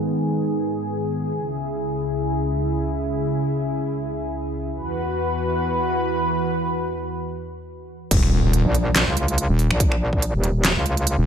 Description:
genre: heavy wobble dubstep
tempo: 142 BPM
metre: 4/4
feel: swing 55% on 16ths, half-time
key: Eb phrygian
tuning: A4 = 441 Hz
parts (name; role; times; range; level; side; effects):
- lush unison pad; sustained chords; 0.0-8.1 s; Db2 to B4; -22 LUFS; equal; chorus, sidechain pumping
- wobble bass; bass; 8.1-11.3 s; Eb1; -18 LUFS; equal; chorus, overdrive
- dubstep drum kit; drums; 8.1-11.2 s; crash cymbal, finger snaps, handclaps, hi-hat, snare drum; -22 LUFS; right 1 dB; studio reverb
- electronic kick drum; drums; 8.1-10.2 s; none; -20 LUFS; equal; studio reverb
- impact; sound effects; 8.1-9.8 s; none; -28 LUFS; equal; none
- metallic wobble bass; bass; 8.7-11.2 s; Eb1 to Db2; -21 LUFS; equal; chorus, overdrive
room: light reverb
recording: low-pass filter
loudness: -20 LUFS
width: side -8 dB against mid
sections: 0.0-8.1 A section; 8.1-11.3 B section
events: filter sweep on analog synth pad 0.0-8.1; filter sweep 0.0-8.1; drop 8.1-11.3; impact 8.1-9.8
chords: 0.0 Abm; 1.4 Dbm; 4.7 Esus2; 8.1 Eb5

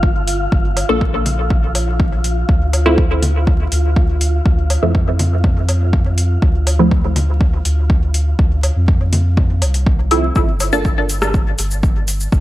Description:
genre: dub techno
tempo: 122 BPM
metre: 4/4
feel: straight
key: unclear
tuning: A4 = 438 Hz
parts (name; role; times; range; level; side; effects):
- soft dub sub bass; bass; 0.0-12.4 s; G1 to F2; -17 LUFS; equal; sidechain pumping
- electronic kick drum; drums; 0.0-12.4 s; none; -15 LUFS; equal; overdrive
- wind-like tuned noise texture; texture; 0.0-10.4 s; F4 to F5; -27 LUFS; equal; built-in reverb, sidechain pumping
- deep house drum kit; drums; 0.3-12.4 s; hi-hat, rim click, shaker; -22 LUFS; equal; overdrive
- woodblock and congas; percussion; 0.8-10.7 s; none; -27 LUFS; left 1 dB; sidechain pumping on perc, dub echo
- filtered dub chord stab; stabs; 0.9-6.9, 10.1-10.9 s; F3 to A4; -18 LUFS; right 1 dB; phaser, sidechain pumping, dub echo
room: digital ambience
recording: vinyl crackle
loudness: -13 LUFS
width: side -16 dB against mid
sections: 0.0-10.4 A section; 10.4-12.4 A section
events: none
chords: 0.0 Gm7; 2.5 Dm7; 10.4 N.C.

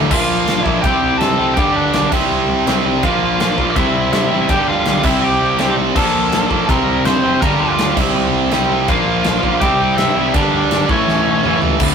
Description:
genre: punk rock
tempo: 164 BPM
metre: 4/4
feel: straight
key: unclear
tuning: A4 = 439 Hz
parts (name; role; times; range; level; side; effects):
- heavy high-gain guitar; riff; 0.0-11.9 s; D2 to C4; -23 LUFS; equal; distortion
- sludgy distorted guitar; riff; 0.0-11.9 s; D2 to C5; -21 LUFS; left 7 dB; overdrive
- tight distorted guitar; riff; 0.0-11.9 s; D2 to C4; -18 LUFS; right 6 dB; distortion
- growling picked electric bass; bass; 0.0-11.9 s; D1 to G2; -25 LUFS; equal; overdrive
- biting lead guitar; melody; 0.1-11.6 s; C#4 to C6; -18 LUFS; left 1 dB; overdrive
- big rock drum kit; drums; 0.1-11.9 s; crash cymbal, kick drum, ride cymbal, snare drum, toms; -20 LUFS; equal; none
room: moderate studio reverb, RT60 0.6 s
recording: rough rehearsal-room recording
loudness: -13 LUFS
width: side -6 dB against mid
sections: 0.1-11.8 A section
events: half time 0.1-11.8; drum fill 11.1-11.8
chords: 0.1 Bb; 0.8 C; 1.6 Gm; 2.1 C; 3.0 Bb; 3.8 C; 4.5 Gm; 5.0 C; 6.0 Bb; 6.7 C; 7.4 Gm; 8.0 C; 8.9 Bb; 9.6 C; 10.3 Gm; 10.9 A

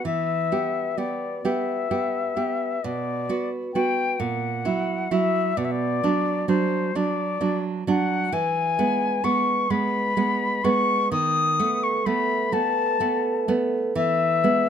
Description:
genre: romantic duo for flute and classical guitar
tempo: 43 BPM (dotted quarters)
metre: 6/8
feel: rubato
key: E major from 8.3 s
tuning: A4 = 440 Hz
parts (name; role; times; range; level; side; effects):
- silver concert flute; melody; 0.0-14.7 s; C5 to D#6; -24 LUFS; left 5 dB; none
- nylon-string guitar; accompaniment; 0.1-14.7 s; A#2 to G4; -24 LUFS; right 4 dB; none
room: light reverb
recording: close, detailed microphones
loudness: -21 LUFS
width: side -8 dB against mid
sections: 0.0-14.7 A section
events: none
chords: 0.1 Em; 2.8 Bm; 4.2 F#7/A#; 5.6 Bm; 8.3 E; 11.1 B7/D#; 14.0 E

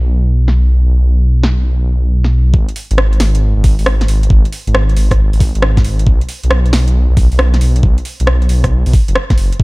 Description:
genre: UK garage, two-step garage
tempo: 136 BPM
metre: 4/4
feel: swing 67% on 16ths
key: unclear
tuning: A4 = 440 Hz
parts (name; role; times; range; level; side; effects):
- dark detuned saw bass; bass; 0.0-9.6 s; F#1 to B1; -11 LUFS; equal; none
- garage drum kit; drums; 0.5-9.6 s; hi-hat, rim click, snare drum; -18 LUFS; equal; overdrive, low-pass filter on snare, studio ambience, low-pass filter on hats
- electronic kick drum; drums; 2.5-9.6 s; none; -11 LUFS; equal; overdrive, studio ambience
room: little or no reverb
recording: dark, warm production, low-pass filter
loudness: -10 LUFS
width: side -24 dB against mid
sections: 0.0-2.5 A section; 2.5-9.6 B section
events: drop 2.5-9.6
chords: none

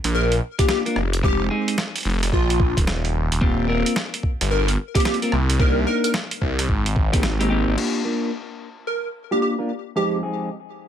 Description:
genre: glitch hop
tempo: 110 BPM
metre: 4/4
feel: swing 64% on 16ths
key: G phrygian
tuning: A4 = 441 Hz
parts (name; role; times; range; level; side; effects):
- phased detuned saw bass; bass; 0.0-7.8 s; Eb1 to C2; -21 LUFS; equal; phaser, tube saturation
- boom bap sampler-style drum kit; drums; 0.0-7.9 s; crash cymbal, hi-hat, rim click, snare drum; -26 LUFS; right 1 dB; none
- plucky unison lead; melody; 0.1-10.2 s; F4 to Bb4; -25 LUFS; equal; wide subtle chorus, ping-pong delay
- clean electric guitar; stabs; 0.6-10.5 s; F2 to Bb4; -24 LUFS; left 1 dB; sidechain pumping, low-pass filter, ping-pong delay
- electronic kick drum; drums; 0.6-7.2 s; none; -21 LUFS; equal; none
room: light reverb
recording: none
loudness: -19 LUFS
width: side -9 dB against mid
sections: 0.0-7.8 A section; 7.8-10.9 B section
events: kick drops out 7.2-7.8; filter sweep on clean electric guitar 7.8-10.9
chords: 0.0 Gm7; 1.2 Fm7; 3.4 Eb69; 5.6 Cm9; 6.7 Abmaj9; 7.8 Gm7; 10.0 Fm9

